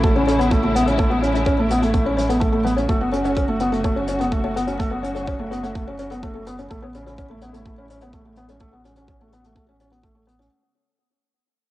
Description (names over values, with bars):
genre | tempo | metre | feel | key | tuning
piano and strings electronica | 126 BPM | 4/4 | straight | unclear | A4 = 444 Hz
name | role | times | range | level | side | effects
warm studio string section | sustained chords | 0.0-10.5 s | C#3 to F#4 | -29 LUFS | left 1 dB | sidechain pumping, low-pass filter, cassette tape
warbly dusty pluck | arpeggios | 0.0-10.5 s | F#3 to F#5 | -31 LUFS | left 7 dB | chorus, sidechain pumping, cassette tape, tape echo
felt-muted upright piano | riff | 0.0-10.5 s | A3 to C#4 | -21 LUFS | equal | cassette tape, tape echo
warm sub bass | bass | 0.0-10.5 s | F#1 to A1 | -28 LUFS | right 1 dB | tube saturation, sidechain pumping
electronic kick drum | drums | 0.0-10.1 s | none | -22 LUFS | right 1 dB | cassette tape
hi-hat | drums | 0.0-10.5 s | none | -40 LUFS | equal | cassette tape
room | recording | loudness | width
moderate spring reverb, RT60 2.0 s | home recording on cassette | -18 LUFS | side -16 dB against mid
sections
0.0-10.5 A section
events
fade-out 0.0-10.5; filter sweep on string section 0.0-10.5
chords
0.0 Amaj7; 2.9 F#m; 6.7 Amaj7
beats
0.03 0.51 | 0.98 1.46 1.94 2.41 | 2.89 3.37 3.84 4.32 | 4.79 5.27 5.75 6.22 | 6.70 7.18 7.65 8.13 | 8.60 9.08 9.56 10.03